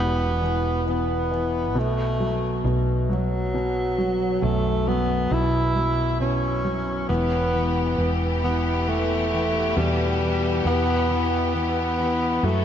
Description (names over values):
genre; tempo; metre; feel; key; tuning
six-eight pop ballad; 45 BPM (dotted quarters); 6/8; straight; unclear; A4 = 440 Hz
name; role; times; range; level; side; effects
breathy tenor saxophone; melody; 0.0-12.6 s; F#3 to E4; -24 LUFS; equal; tape echo
clear concert grand piano; accompaniment; 0.0-12.6 s; F#2 to F#3; -27 LUFS; left 1 dB; none
woody fretless electric bass; bass; 0.0-12.6 s; E1 to F#2; -26 LUFS; equal; none
bright studio string section; sustained chords; 7.1-12.6 s; E3 to A4; -28 LUFS; left 2 dB; none
room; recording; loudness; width
wet lush hall reverb, RT60 3.3 s; dreamy mix soaked in reverb, nothing above 7.8 kHz; -21 LUFS; side -9 dB against mid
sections
0.0-12.6 A section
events
none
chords
0.0 E5; 1.8 B5; 7.1 Em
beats
0.42 | 1.76 3.09 | 4.43 5.76 | 7.10 8.43 | 9.77 11.11 | 12.44